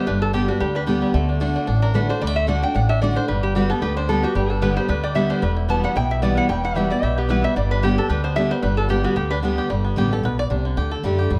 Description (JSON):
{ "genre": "bluegrass", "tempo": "224 BPM", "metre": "4/4", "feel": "swing 55% on 8ths", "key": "G major", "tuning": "A4 = 436 Hz", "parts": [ { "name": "bluegrass banjo", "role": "melody", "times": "0.0-11.4 s", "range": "D3 to D5", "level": "-31 LUFS", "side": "equal", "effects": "slapback echo" }, { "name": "lap resonator guitar", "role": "melody", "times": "0.0-9.4 s", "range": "F#4 to A5", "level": "-27 LUFS", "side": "equal", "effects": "none" }, { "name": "picked steel-string acoustic guitar", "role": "accompaniment", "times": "0.0-11.4 s", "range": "E2 to G4", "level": "-24 LUFS", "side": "equal", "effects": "none" }, { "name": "upright bass", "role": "bass", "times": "0.1-11.4 s", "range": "E1 to F#2", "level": "-25 LUFS", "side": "equal", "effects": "none" } ], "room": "light reverb", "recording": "close, detailed microphones", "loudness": "-21 LUFS", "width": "mono", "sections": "0.0-1.1 A section; 1.1-9.7 A section; 9.7-11.4 B section", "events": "five-string banjo solo 9.7-11.4", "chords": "0.0 G; 1.1 D; 3.3 G; 5.4 Emadd9; 7.6 G; 9.7 Gadd9; 10.8 Dsus4" }